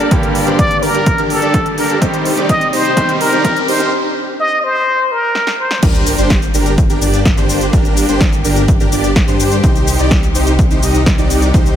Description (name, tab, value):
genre	EDM, festival progressive house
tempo	126 BPM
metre	4/4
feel	straight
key	G minor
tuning	A4 = 440 Hz
part	trumpet with plunger mute	melody	0.0-5.8 s	A4 to Eb5	-16 LUFS	left 1 dB	digital delay
part	clear baby grand piano	accompaniment	0.0-5.8 s	G2 to G4	-21 LUFS	right 2 dB	sidechain pumping, digital delay
part	clear symphonic string section	sustained chords	0.0-11.8 s	C3 to D5	-25 LUFS	left 1 dB	sidechain pumping
part	dense compressed supersaw	riff	0.0-11.8 s	D4 to Eb5	-18 LUFS	equal	vintage 12-bit sampler grit, sidechain pumping, low-pass filter, digital delay
part	wide detuned saw bass	bass	0.0-11.8 s	G1 to G2	-19 LUFS	equal	chorus, sidechain pumping, high-pass filter
part	riser and sub drop	sound effects	1.5-7.7 s	none	-27 LUFS	equal	none
part	big-room dance drum kit	drums	0.1-11.8 s	crash cymbal, hi-hat, shaker, snare drum	-20 LUFS	equal	overdrive
part	electronic kick drum	drums	0.1-11.6 s	none	-14 LUFS	equal	overdrive
room	moderate lush hall reverb, RT60 2.0 s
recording	high-pass filter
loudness	-11 LUFS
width	side -10 dB against mid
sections	0.0-5.8 A section; 5.8-11.8 B section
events	build-up 0.0-5.8; riser 1.5-3.9; drum fill 2.0-3.9, 5.4-5.8; break 3.9-5.8; drop 5.8-11.8; impact 5.8-7.7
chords	0.0 Gm; 2.0 Cm; 5.8 Gm; 9.6 Cm